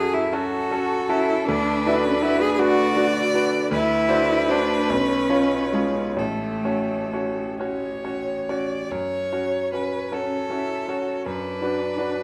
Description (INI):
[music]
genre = classical, slow romantic movement for piano trio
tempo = 41-56 BPM (dotted quarters)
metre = 6/8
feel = rubato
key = F# minor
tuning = A4 = 440 Hz
[part]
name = rich cello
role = second line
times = 0.0-12.2 s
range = G#3 to G#4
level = -26 LUFS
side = equal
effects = none
[part]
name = bright concert grand piano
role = accompaniment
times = 0.0-12.2 s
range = A1 to C#5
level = -26 LUFS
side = equal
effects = none
[part]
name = rich violin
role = melody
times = 0.3-12.2 s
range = A4 to D5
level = -31 LUFS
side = equal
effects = none
[sound]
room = wet recital hall reverb, RT60 1.6 s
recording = none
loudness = -23 LUFS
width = mono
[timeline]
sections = 0.0-8.9 A section; 8.9-12.2 B section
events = none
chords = 0.0 F#m; 1.5 Bm/D; 3.7 D7; 4.9 C#7/B; 6.2 F#m/A; 8.9 F#m; 11.3 Bm/F#